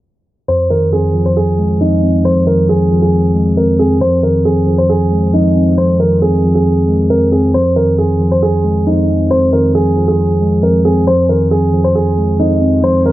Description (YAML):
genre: hip hop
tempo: 136 BPM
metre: 4/4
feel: half-time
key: F minor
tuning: A4 = 441 Hz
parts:
  - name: dark baby grand piano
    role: melody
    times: 0.5-13.1 s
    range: Eb4 to C5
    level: -14 LUFS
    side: right 2 dB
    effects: low-pass filter
  - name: mellow tine electric piano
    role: accompaniment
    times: 0.5-13.1 s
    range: F2 to C4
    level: -12 LUFS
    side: equal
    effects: low-pass filter
room: light reverb, small room ambience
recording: low-pass filter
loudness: -10 LUFS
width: side -15 dB against mid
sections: 0.5-13.1 A section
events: filter sweep 0.5-13.1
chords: 0.5 Fm7